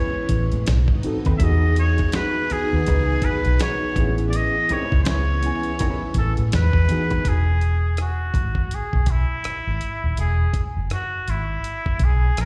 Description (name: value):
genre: R&B, neo-soul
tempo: 82 BPM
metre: 4/4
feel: swing 60% on 16ths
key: E major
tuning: A4 = 440 Hz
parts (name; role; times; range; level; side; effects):
- trumpet with straight mute; melody; 0.0-12.5 s; E4 to E5; -29 LUFS; equal; plate reverb, slapback echo
- mellow tine electric piano; accompaniment; 0.0-7.3 s; B3 to G#5; -29 LUFS; equal; plate reverb, slapback echo
- string machine, violins; sustained chords; 0.0-7.2 s; E3 to G#4; -37 LUFS; equal; ensemble chorus, plate reverb
- vintage muted fingered electric bass; bass; 0.3-12.5 s; D#1 to E3; -22 LUFS; equal; none
- dusty soul sampler-style drum kit; drums; 0.3-12.5 s; hi-hat, kick drum, rim click, snare drum; -26 LUFS; equal; none
- hollow-body jazz guitar; second line; 1.3-7.2 s; G#3 to B4; -36 LUFS; equal; plate reverb, slapback echo
room: light reverb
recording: live gig heard through the venue's PA, recital hall reverb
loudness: -21 LUFS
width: mono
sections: 0.0-7.3 A section; 7.3-12.5 B section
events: none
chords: 0.0 Amaj9; 0.7 B7b9; 1.4 Emaj9; 4.0 Amaj9; 6.5 Emaj9; 7.3 E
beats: 0.67 | 1.40 2.13 2.86 3.59 | 4.33 5.06 5.79 6.52 | 7.25 7.98 8.71 9.45 | 10.18 10.91 11.64 12.37